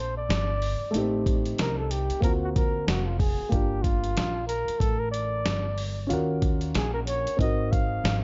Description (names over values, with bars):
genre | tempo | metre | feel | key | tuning
hip hop, jazz-hop | 93 BPM | 4/4 | swing 60% on 16ths | unclear | A4 = 440 Hz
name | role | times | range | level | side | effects
breathy flugelhorn | melody | 0.0-8.2 s | E#4 to F5 | -33 LUFS | equal | analog delay
dark upright piano | accompaniment | 0.0-8.2 s | A3 to Bb4 | -33 LUFS | equal | none
upright bass | bass | 0.0-8.2 s | E#1 to Eb2 | -32 LUFS | equal | none
dusty soul sampler-style drum kit | drums | 0.3-8.2 s | hi-hat, kick drum, snare drum | -30 LUFS | equal | none
room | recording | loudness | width
light reverb, small room ambience | dark, warm production, nothing above 7.7 kHz | -26 LUFS | mono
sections
0.0-8.2 A section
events
flugelhorn solo 0.0-8.2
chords
0.0 Bbmaj9; 0.9 Am7b5; 2.2 D7alt; 3.5 Gm9; 6.1 Ebm7; 7.4 Ab9